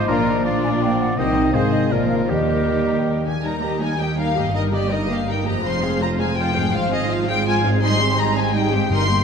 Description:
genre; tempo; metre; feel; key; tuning
classical, dramatic, fast romantic movement for symphony orchestra; 165 BPM; 3/4; straight; Eb major; A4 = 440 Hz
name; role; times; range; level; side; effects
clear symphonic violin section; melody; 0.0-9.2 s; Bb4 to C6; -25 LUFS; left 4 dB; none
clear clarinet; second line; 0.0-3.2 s; Bb4 to Eb5; -31 LUFS; left 2 dB; none
clear oboe; second line; 0.0-3.3 s; G4 to Eb5; -28 LUFS; equal; none
mellow hollow silver concert flute; second line; 0.0-3.2 s; D5 to Bb5; -27 LUFS; equal; none
rich symphonic violin section; second line; 0.0-9.2 s; Eb4 to G5; -28 LUFS; left 2 dB; none
warm bassoon; accompaniment; 0.0-3.3 s; Eb3 to G3; -28 LUFS; right 1 dB; none
warm symphonic viola section; accompaniment; 0.0-9.2 s; F3 to G4; -26 LUFS; right 3 dB; none
concert harp; arpeggios; 0.0-9.2 s; F2 to C6; -26 LUFS; left 8 dB; none
clear symphonic double bass section; bass; 0.0-9.2 s; F1 to Eb2; -26 LUFS; right 3 dB; none
rich symphonic cello section; bass; 0.0-9.2 s; Eb2 to Eb3; -25 LUFS; right 3 dB; none
dark French horn section; sustained chords; 0.1-3.3 s; Bb3 to G4; -27 LUFS; left 2 dB; none
timpani; percussion; 8.9-9.2 s; G2; -23 LUFS; left 1 dB; none
room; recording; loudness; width
wet concert hall reverb, RT60 1.7 s; dark, warm production; -17 LUFS; side -6 dB against mid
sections
0.0-3.4 A section; 3.4-9.2 B section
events
none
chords
0.1 Bb; 1.2 Cm; 1.5 Ab; 1.9 Bb; 2.3 Eb; 4.5 Eb/G; 5.6 Fm; 6.7 Fm/Ab; 7.8 Abmaj7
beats
| 0.09 0.45 0.81 | 1.18 1.54 1.92 | 2.30 2.68 3.06 | 3.44 3.81 4.18 | 4.55 4.91 5.28 | 5.64 6.01 6.37 | 6.73 7.09 7.46 | 7.82 8.18 8.54 | 8.90

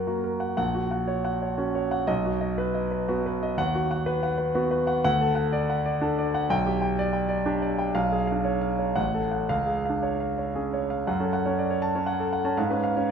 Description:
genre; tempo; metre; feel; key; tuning
classical, virtuoso piano study; 113-126 BPM; 3/4; rubato; F# minor from 5.0 s; A4 = 444 Hz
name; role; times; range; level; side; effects
clear concert grand piano; solo; 0.0-13.1 s; A1 to A5; -24 LUFS; equal; none
room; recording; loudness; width
moderate recital hall reverb, RT60 1.5 s; minimal, uncompressed stereo recording; -24 LUFS; side -7 dB against mid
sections
0.0-11.1 A section; 11.1-13.1 B section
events
none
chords
0.0 F#; 0.6 F#/A#; 2.1 B; 3.6 B/D#; 5.0 D; 6.5 G/B; 8.0 C#7/B; 9.0 F#m/A; 9.5 C#; 11.1 F#m; 12.6 C#7/G#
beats
0.07 | 0.58 1.09 1.59 | 2.09 2.58 3.08 | 3.58 4.06 4.55 | 5.04 5.52 6.00 | 6.49 6.98 7.47 | 7.96 8.46 8.97 | 9.49 10.02 10.55 | 11.07 11.58 12.08 | 12.58 13.09

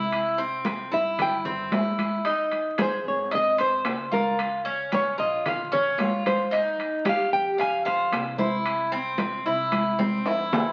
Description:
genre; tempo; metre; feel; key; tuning
latin, Cuban son and guajira; 112 BPM; 4/4; straight; F minor; A4 = 440 Hz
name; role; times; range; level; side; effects
Cuban tres; arpeggios; 0.0-10.7 s; C4 to F5; -28 LUFS; equal; none
upright bass; bass; 0.0-10.7 s; Ab1 to G2; -45 LUFS; equal; none
congas; percussion; 0.1-10.6 s; none; -32 LUFS; equal; none
timbales; percussion; 0.1-10.7 s; none; -34 LUFS; equal; none
nylon-string guitar; melody; 0.9-8.6 s; Bb4 to Ab5; -28 LUFS; equal; none
room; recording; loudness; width
wet studio reverb, RT60 1.0 s; very old 78 rpm record, vinyl crackle, nothing above 7.9 kHz; -25 LUFS; mono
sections
0.0-10.7 A section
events
nylon-string guitar solo 0.0-10.7; drum fill 9.7-10.7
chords
0.1 C; 2.3 Ebsus4; 3.3 Ab; 4.4 Db; 5.5 Bbm; 6.5 Eb; 7.6 F5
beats
| 0.12 0.66 1.19 1.72 | 2.25 2.79 3.32 3.85 | 4.39 4.92 5.45 5.99 | 6.52 7.05 7.59 8.12 | 8.65 9.19 9.72 10.26

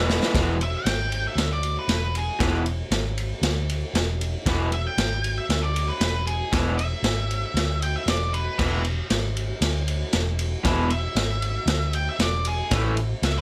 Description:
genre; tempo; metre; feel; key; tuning
garage rock duo or trio; 116 BPM; 4/4; straight; E mixolydian; A4 = 442 Hz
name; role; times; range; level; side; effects
octave-fuzz lead guitar; melody; 0.0-13.4 s; G#4 to G5; -31 LUFS; equal; distortion
raw garage guitar; riff; 0.0-12.9 s; E2 to E4; -28 LUFS; equal; overdrive
hollow-body short-scale fingered electric bass; bass; 0.0-13.4 s; E1 to D2; -28 LUFS; equal; none
raw garage drum kit; drums; 0.1-13.4 s; crash cymbal, kick drum, ride cymbal, snare drum; -28 LUFS; equal; none
room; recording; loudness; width
light reverb; none; -24 LUFS; mono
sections
0.3-13.4 A section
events
drum fill 0.0-0.3; lead electric guitar solo 0.3-13.4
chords
0.3 E; 12.7 A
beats
| 0.34 0.85 1.37 1.88 | 2.40 2.91 3.43 3.95 | 4.46 4.98 5.49 6.01 | 6.52 7.04 7.56 8.07 | 8.59 9.11 9.62 10.14 | 10.66 11.17 11.69 12.21 | 12.72 13.24

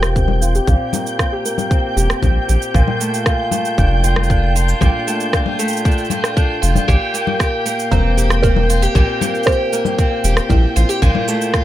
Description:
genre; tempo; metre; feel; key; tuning
folktronica; 116 BPM; 4/4; straight; unclear; A4 = 439 Hz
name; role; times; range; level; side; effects
picked twelve-string acoustic guitar; arpeggios; 0.0-11.6 s; Bb2 to G4; -20 LUFS; equal; vintage 12-bit sampler grit, low-pass filter, tape echo
round analog bass; bass; 0.0-11.1 s; E1 to Bb1; -15 LUFS; equal; none
electronic rim click, shaker and congas; drums; 0.0-11.6 s; none; -22 LUFS; left 2 dB; none
flickering grainy texture; texture; 0.0-11.6 s; G5 to G6; -24 LUFS; equal; built-in reverb
electronic kick drum; drums; 0.2-11.6 s; none; -16 LUFS; equal; none
buzzing kalimba; second line; 7.9-10.6 s; E4 to Bb5; -23 LUFS; right 2 dB; ping-pong delay
room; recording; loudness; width
light reverb; none; -14 LUFS; side -13 dB against mid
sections
0.0-11.6 A section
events
filter sweep on twelve-string acoustic guitar 0.0-11.6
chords
0.0 C7; 2.7 Bbmaj7; 6.9 C7; 11.0 Bbmaj7(no3)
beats
0.16 | 0.68 1.19 1.71 2.23 | 2.74 3.26 3.78 4.29 | 4.81 5.33 5.85 6.36 | 6.88 7.40 7.92 8.43 | 8.95 9.47 9.98 10.50 | 11.02 11.54

